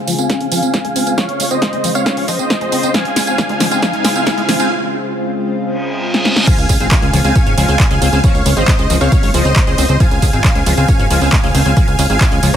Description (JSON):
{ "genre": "uplifting trance", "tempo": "136 BPM", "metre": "4/4", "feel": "straight", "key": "unclear", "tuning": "A4 = 439 Hz", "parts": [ { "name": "dense compressed supersaw", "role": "melody", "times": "0.0-12.6 s", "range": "C5 to Ab5", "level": "-18 LUFS", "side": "equal", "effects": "sidechain pumping, low-pass filter, dub echo" }, { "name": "riser and reverse cymbal", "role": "sound effects", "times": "0.0-6.5 s", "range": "none", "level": "-23 LUFS", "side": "equal", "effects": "none" }, { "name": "lush unison pad", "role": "sustained chords", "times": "0.1-12.6 s", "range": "Db3 to F4", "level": "-22 LUFS", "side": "left 1 dB", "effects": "chorus, sidechain pumping" }, { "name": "liquid acid bass", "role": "arpeggios", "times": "0.1-12.6 s", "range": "F3 to Db4", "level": "-22 LUFS", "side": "left 2 dB", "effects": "ensemble chorus, cassette tape, sidechain pumping, tape echo" }, { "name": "techno drum kit", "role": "drums", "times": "0.1-12.6 s", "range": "crash cymbal, handclaps, hi-hat, snare drum, tambourine", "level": "-18 LUFS", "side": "right 1 dB", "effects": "overdrive" }, { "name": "electronic kick drum", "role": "drums", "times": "0.3-12.3 s", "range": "none", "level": "-14 LUFS", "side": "equal", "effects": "high-pass filter on kick" }, { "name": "plucky analog bass", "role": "bass", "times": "6.6-12.6 s", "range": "Ab1 to Db2", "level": "-15 LUFS", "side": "equal", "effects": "sidechain pumping" } ], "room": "light reverb", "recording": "none", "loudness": "-11 LUFS", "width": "side -9 dB against mid", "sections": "0.0-6.5 A section; 6.5-12.6 B section", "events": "build-up 0.0-6.5; drum fill 0.0-4.7, 6.1-6.5; riser 0.0-4.7; filter sweep on supersaw synth 0.0-6.5; filter sweep on acid bass 0.0-6.5; break 4.7-6.5; reverse cymbal 5.8-6.5; drop 6.5-12.6", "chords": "0.0 Dbmaj7" }